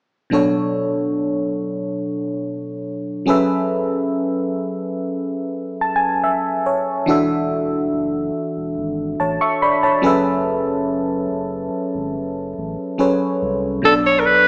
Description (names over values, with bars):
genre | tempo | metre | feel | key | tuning
contemporary R&B | 71 BPM | 4/4 | straight | F# minor | A4 = 440 Hz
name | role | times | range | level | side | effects
FM electric piano | accompaniment | 0.3-14.5 s | B2 to C#6 | -18 LUFS | equal | chorus
warm sub bass | bass | 7.1-14.5 s | E1 to B#1 | -31 LUFS | equal | none
warm alto saxophone | melody | 13.8-14.5 s | A4 to C#5 | -11 LUFS | equal | none
room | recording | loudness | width
wet spring reverb, RT60 2.0 s, small room ambience | echo-heavy mix, small speaker sound | -17 LUFS | side -39 dB against mid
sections
0.3-13.8 A section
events
FM electric piano fill 5.4-7.1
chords
0.3 Bm7; 3.3 F#m11; 7.1 E7sus4; 10.0 F#m11; 13.8 Bm7